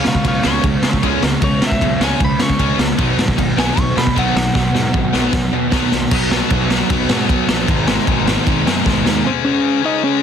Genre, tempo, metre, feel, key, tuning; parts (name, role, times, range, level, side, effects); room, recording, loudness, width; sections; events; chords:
punk rock; 154 BPM; 4/4; straight; A4 = 441 Hz
lightly driven lead guitar; melody; 0.0-5.3, 9.3-10.2 s; C4 to Db6; -22 LUFS; equal; tape echo
crunchy overdriven guitar; riff; 0.0-9.2 s; Ab2 to Db4; -21 LUFS; right 13 dB
distorted electric guitar; riff; 0.0-10.2 s; Ab2 to Db4; -21 LUFS; left 14 dB; overdrive
thick fuzz guitar; riff; 0.0-9.2 s; Ab2 to F4; -24 LUFS; equal; distortion
raw garage drum kit; drums; 0.0-9.1 s; crash cymbal, kick drum, ride cymbal, snare drum; -18 LUFS; equal
fuzz picked electric bass; bass; 0.1-9.2 s; Ab1 to Db3; -22 LUFS; equal; overdrive
little or no reverb; dense, heavily limited modern master; -13 LUFS; side -8 dB against mid
0.0-6.1 A section; 6.1-9.2 B section
lead electric guitar solo 0.0-6.1; drum fill 4.6-6.1, 8.9-9.2
0.0 Db; 3.0 Cb; 7.7 Ab; 9.2 Db5